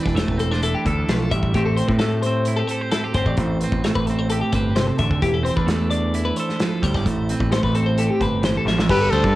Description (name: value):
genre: math rock and midwest emo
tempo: 130 BPM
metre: 4/4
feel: straight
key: A minor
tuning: A4 = 440 Hz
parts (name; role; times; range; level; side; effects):
- twelve-string electric guitar; accompaniment; 0.0-9.4 s; A2 to C5; -23 LUFS; right 3 dB; none
- twelve-string electric guitar; arpeggios; 0.0-9.4 s; G4 to E5; -25 LUFS; left 4 dB; spring reverb
- growling picked electric bass; bass; 0.1-9.4 s; E1 to A2; -23 LUFS; equal; overdrive
- loose indie drum kit; drums; 0.1-9.3 s; crash cymbal, hi-hat, kick drum, ride cymbal, snare drum; -25 LUFS; equal; cassette tape
- warm trumpet; melody; 8.9-9.4 s; A4 to B4; -19 LUFS; equal; cassette tape
room: little or no reverb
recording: home recording on cassette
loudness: -18 LUFS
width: side -16 dB against mid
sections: 0.0-8.9 A section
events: drum fill 8.7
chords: 0.0 E7sus4; 1.5 Am7; 5.2 E7sus4; 7.1 Am7